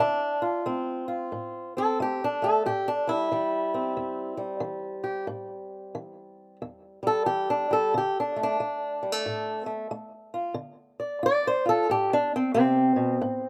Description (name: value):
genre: acoustic country blues, solo or duo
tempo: 91 BPM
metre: 4/4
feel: swing 64% on 8ths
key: unclear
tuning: A4 = 436 Hz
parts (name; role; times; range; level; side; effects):
- fingerpicked swing-style acoustic guitar; solo; 0.0-13.5 s; E2 to D5; -27 LUFS; equal; none
room: little or no reverb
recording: recorded outdoors, with no room sound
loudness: -27 LUFS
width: mono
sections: 0.0-13.5 A section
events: steel-string acoustic guitar solo 0.0-13.5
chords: 0.0 Dm7; 2.7 Am7; 7.9 Dm7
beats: | 0.01 0.67 1.33 1.99 | 2.65 3.31 3.97 4.63 | 5.29 5.95 6.61 7.26 | 7.92 8.58 9.24 9.90 | 10.56 11.22 11.88 12.54 | 13.20